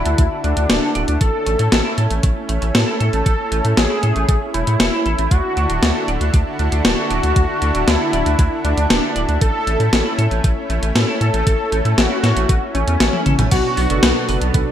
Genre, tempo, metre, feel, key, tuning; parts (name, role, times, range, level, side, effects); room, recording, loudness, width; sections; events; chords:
synthwave; 117 BPM; 4/4; straight; A major; A4 = 442 Hz
wide unison lead; melody; 0.0-14.4 s; C#4 to A4; -22 LUFS; equal; analog chorus, ping-pong delay
lush unison pad; sustained chords; 0.0-14.7 s; D3 to A4; -24 LUFS; equal; chorus, sidechain pumping
round analog bass; bass; 0.0-14.6 s; D1 to A2; -19 LUFS; equal
semi-hollow electric guitar; riff; 0.1-14.6 s; A3 to D5; -29 LUFS; right 2 dB; analog chorus, digital delay
gated 80s digital drum machine; drums; 0.1-14.6 s; crash cymbal, hi-hat, snare drum, toms; -19 LUFS; left 1 dB; gated reverb, gated reverb snare
electronic kick drum; drums; 0.2-14.6 s; -16 LUFS; equal
analog synth brass; stabs; 13.5-14.7 s; B2 to A4; -23 LUFS; right 3 dB; chorus, cassette tape
light reverb; bright 1980s-style digital production; -15 LUFS; side -10 dB against mid
0.0-13.5 A section; 13.5-14.7 B section
drum fill 13.1-13.5
0.0 Dadd9; 1.2 A; 5.3 Dadd9; 9.4 A; 13.5 Bm